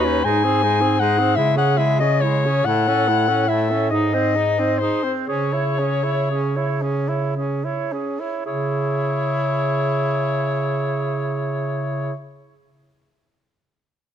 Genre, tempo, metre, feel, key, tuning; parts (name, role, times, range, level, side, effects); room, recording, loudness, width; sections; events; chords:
classical, lyrical piece for single-reed quartet; 35-54 BPM (dotted quarters); 6/8; rubato; C# minor; A4 = 440 Hz
mellow soprano saxophone; melody; 0.0-12.1 s; B4 to G#5; -22 LUFS; left 7 dB
bright clarinet; second line; 0.0-12.1 s; D#4 to C#5; -26 LUFS; right 10 dB
clear tenor saxophone; accompaniment; 0.0-12.1 s; G#3 to E4; -26 LUFS; left 1 dB
clear bass clarinet; bass; 0.0-12.1 s; D#2 to C#3; -22 LUFS; right 2 dB
moderate recital hall reverb, RT60 1.7 s; close, detailed microphones; -18 LUFS; side -9 dB against mid
0.0-8.5 A section; 8.5-11.4 B section
slowing down 1.4-8.5
0.2 G#; 1.4 C#m; 2.6 A; 3.9 G#; 5.3 C#m